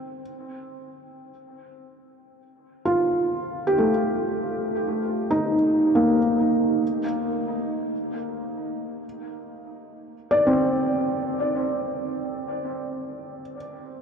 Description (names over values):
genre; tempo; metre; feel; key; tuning
ambient; free time; none; none; F mixolydian; A4 = 441 Hz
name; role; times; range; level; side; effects
felt-muted upright piano; solo; 0.0-14.0 s; A3 to D5; -22 LUFS; equal; diffuse ambient delay
room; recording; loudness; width
wet huge ambient reverb, RT60 8.4 s; dark, warm production; -21 LUFS; side -6 dB against mid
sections
0.0-14.0 A section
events
none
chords
0.0 F7sus4; 6.8 Amadd11 (rootless)